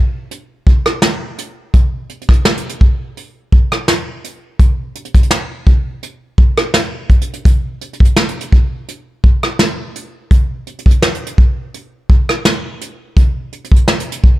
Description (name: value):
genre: R&B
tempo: 84 BPM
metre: 4/4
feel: swing 54% on 16ths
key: none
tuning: none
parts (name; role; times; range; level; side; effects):
- soft brush drum kit; drums; 0.3-14.4 s; hi-hat, kick drum, rim click, snare drum; -11 LUFS; equal; none
room: little or no reverb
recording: dry, gritty hardware recording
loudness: -12 LUFS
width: side -16 dB against mid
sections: 0.0-14.4 A section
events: none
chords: none